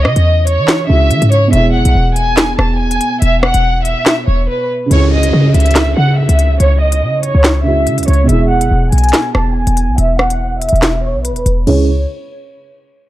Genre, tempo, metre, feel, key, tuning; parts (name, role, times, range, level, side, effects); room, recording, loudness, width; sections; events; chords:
hip hop, drill; 142 BPM; 4/4; half-time; C# minor; A4 = 441 Hz
felt-muted upright piano; accompaniment; 0.0-11.9 s; B2 to G#4; -19 LUFS; right 4 dB; low-pass filter
short 808-style bass; bass; 0.0-12.1 s; E1 to E3; -12 LUFS; equal
warm chamber violin section; melody; 0.1-11.9 s; B4 to A5; -16 LUFS; equal; low-pass filter, tape echo
drill drum kit; drums; 0.1-11.8 s; crash cymbal, handclaps, hi-hat, rim click, snare drum; -16 LUFS; equal
downlifter; sound effects; 4.9-8.3 s; -24 LUFS; equal
digital ambience; dark, warm production; -10 LUFS; side -15 dB against mid
0.0-4.9 A section; 4.9-11.7 B section; 11.7-13.1 C section
break 4.5-4.9; filter sweep 4.9-11.7
0.0 C#m; 1.5 E; 4.9 C#m; 8.3 E; 11.7 C#m